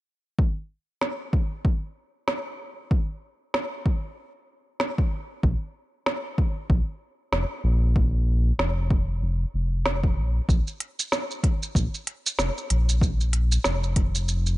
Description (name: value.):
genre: organic downtempo.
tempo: 95 BPM.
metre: 4/4.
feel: swing 57% on 16ths.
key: unclear.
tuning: A4 = 440 Hz.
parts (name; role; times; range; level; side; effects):
electronic kick drum; drums; 0.4-14.1 s; none; -22 LUFS; equal; none.
organic electronic drum kit; drums; 1.0-14.6 s; hi-hat, shaker, snare drum; -28 LUFS; right 1 dB; none.
round analog bass; bass; 5.4-14.6 s; F1 to Bb1; -23 LUFS; equal; none.
room: little or no reverb.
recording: nothing above 10.9 kHz.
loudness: -23 LUFS.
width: side -17 dB against mid.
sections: 0.4-10.5 A section; 10.5-14.6 B section.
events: none.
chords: none.